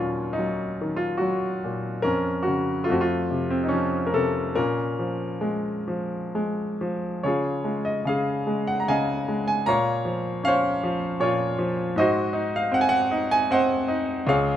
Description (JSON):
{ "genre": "classical, lyrical solo piano", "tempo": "62-80 BPM", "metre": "3/4", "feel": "rubato", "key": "Bb minor, Db major from 7.2 s", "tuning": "A4 = 444 Hz", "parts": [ { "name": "bright grand piano", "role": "solo", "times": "0.0-14.6 s", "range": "Db2 to Bb5", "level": "-22 LUFS", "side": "equal", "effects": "none" } ], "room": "light reverb", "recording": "close, detailed microphones", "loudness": "-22 LUFS", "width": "side -10 dB against mid", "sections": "0.0-7.2 A section; 7.2-14.6 B section", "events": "none", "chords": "0.0 Ebm; 2.0 Bbm/F; 2.9 F; 4.6 Bbm7; 7.2 Dbadd9; 9.7 Bbmadd9; 12.0 Ab7", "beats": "0.36 1.21 | 2.04 2.88 3.72 | 4.56 5.42 6.35 | 7.24 8.06 8.88 | 9.68 10.46 11.22 | 11.98 12.74 13.52 | 14.30" }